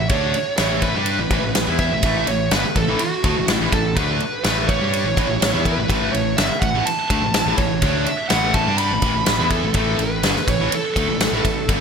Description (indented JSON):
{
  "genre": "hard rock",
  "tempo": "124 BPM",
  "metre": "4/4",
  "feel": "straight",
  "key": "A major",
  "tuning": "A4 = 440 Hz",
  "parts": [
    { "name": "smooth overdriven lead guitar", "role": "melody", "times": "0.0-11.8 s", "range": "F#4 to B5", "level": "-22 LUFS", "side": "right 3 dB", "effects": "digital delay" },
    { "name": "cranked stack guitar", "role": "riff", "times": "0.0-11.8 s", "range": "G2 to G4", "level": "-27 LUFS", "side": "left 12 dB", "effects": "overdrive" },
    { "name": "scooped high-gain guitar", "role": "riff", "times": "0.0-11.8 s", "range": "G2 to G4", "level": "-26 LUFS", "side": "right 11 dB", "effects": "distortion" },
    { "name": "tight distorted guitar", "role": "riff", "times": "0.0-11.8 s", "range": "G2 to G4", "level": "-28 LUFS", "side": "left 1 dB", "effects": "distortion" },
    { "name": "fuzz fingered electric bass", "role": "bass", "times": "0.0-11.8 s", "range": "G1 to G2", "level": "-25 LUFS", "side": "left 1 dB", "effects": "overdrive" },
    { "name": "big rock drum kit", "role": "drums", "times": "0.1-11.8 s", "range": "kick drum, ride cymbal, snare drum", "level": "-22 LUFS", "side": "left 1 dB", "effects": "none" }
  ],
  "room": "moderate plate reverb, RT60 1.6 s, studio ambience",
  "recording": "bright 1980s-style digital production",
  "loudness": "-17 LUFS",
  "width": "side -6 dB against mid",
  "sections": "0.0-11.8 A section",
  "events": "none",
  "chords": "0.0 A"
}